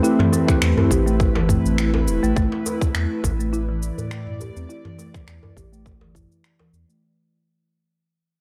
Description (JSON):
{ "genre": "organic downtempo", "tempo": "103 BPM", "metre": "4/4", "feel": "swing 55% on 16ths", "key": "A minor", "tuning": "A4 = 439 Hz", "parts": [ { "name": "tine electric piano", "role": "accompaniment", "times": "0.0-2.4 s", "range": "A3 to B4", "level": "-28 LUFS", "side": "equal", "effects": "subtle chorus, sidechain pumping, analog delay" }, { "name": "airy breathy pad", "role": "sustained chords", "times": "0.0-7.0 s", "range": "A3 to D5", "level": "-28 LUFS", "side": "equal", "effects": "chorus, sidechain pumping" }, { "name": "folk marimba with soft mallets", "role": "arpeggios", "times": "0.0-7.0 s", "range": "E3 to G4", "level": "-28 LUFS", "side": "equal", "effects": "low-pass filter, analog delay" }, { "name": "deep house drum kit", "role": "drums", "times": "0.0-7.0 s", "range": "finger snaps, shaker, toms", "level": "-28 LUFS", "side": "equal", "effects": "none" }, { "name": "djembe", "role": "percussion", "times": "0.2-6.7 s", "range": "none", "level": "-34 LUFS", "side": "equal", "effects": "none" }, { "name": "electronic kick drum", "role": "drums", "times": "0.5-6.3 s", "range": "none", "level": "-24 LUFS", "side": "equal", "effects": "overdrive" }, { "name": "warm sub bass", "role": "bass", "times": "0.6-6.9 s", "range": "E1 to A2", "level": "-25 LUFS", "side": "equal", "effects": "none" } ], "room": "digital ambience", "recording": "dry, gritty hardware recording", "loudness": "-20 LUFS", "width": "mono", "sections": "0.0-7.0 A section", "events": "fade-out 0.0-7.0; filter sweep on marimba 0.0-7.0", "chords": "0.0 Am7" }